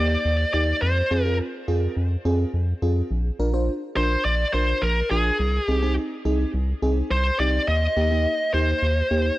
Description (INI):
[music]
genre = synth-pop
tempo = 105 BPM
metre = 4/4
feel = straight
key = Bb mixolydian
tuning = A4 = 443 Hz
[part]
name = high-gain lead guitar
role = melody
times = 0.0-9.4 s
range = Ab4 to Eb5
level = -24 LUFS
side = equal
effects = distortion, tape echo
[part]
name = FM electric piano with soft pad layer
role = accompaniment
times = 0.0-9.3 s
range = Bb3 to C5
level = -27 LUFS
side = equal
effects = chorus
[part]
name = round analog bass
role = bass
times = 0.0-9.3 s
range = Bb1 to F2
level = -23 LUFS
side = equal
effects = none
[sound]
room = digital ambience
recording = dry, gritty hardware recording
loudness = -20 LUFS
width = side -17 dB against mid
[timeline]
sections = 0.0-9.4 A section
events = none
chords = 0.0 Eb; 0.8 Fm; 3.1 Bb; 5.4 Ab/C; 7.7 Eb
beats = 0.25 | 0.82 1.40 1.97 2.54 | 3.11 3.68 4.25 4.82 | 5.39 5.97 6.54 7.11 | 7.68 8.25 8.82